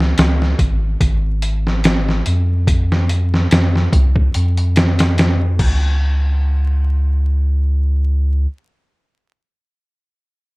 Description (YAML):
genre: trip hop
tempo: 72 BPM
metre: 4/4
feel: swing 55% on 16ths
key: unclear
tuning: A4 = 444 Hz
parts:
  - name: soft dub sub bass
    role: bass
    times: 0.0-8.5 s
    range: G#1 to E#2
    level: -15 LUFS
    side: equal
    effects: none
  - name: trip hop sampler-style drum kit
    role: drums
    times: 0.0-5.8 s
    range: crash cymbal, hi-hat, kick drum, snare drum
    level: -16 LUFS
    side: equal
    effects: none
room: little or no reverb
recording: dark, warm production, vinyl crackle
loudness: -14 LUFS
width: side -24 dB against mid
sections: 0.0-6.0 A section; 6.0-9.3 B section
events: none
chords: none